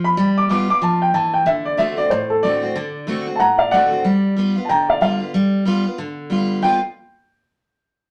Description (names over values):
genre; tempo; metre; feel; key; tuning
rock; 186 BPM; 4/4; swing 59% on 8ths; G mixolydian; A4 = 440 Hz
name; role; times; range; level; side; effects
warm upright piano; melody; 0.0-6.8 s; A4 to D6; -19 LUFS; equal; none
picked steel-string acoustic guitar; accompaniment; 0.0-6.8 s; A2 to F#4; -22 LUFS; equal; none
room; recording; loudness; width
wet studio reverb, RT60 0.6 s; none; -18 LUFS; mono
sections
0.0-6.6 A section; 6.6-7.9 B section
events
none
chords
0.2 G7; 1.5 D7; 4.0 G7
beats
| 0.18 0.50 0.82 1.14 | 1.47 1.79 2.11 2.43 | 2.76 3.08 3.40 3.73 | 4.05 4.37 4.69 5.02 | 5.34 5.66 5.98 6.31 | 6.63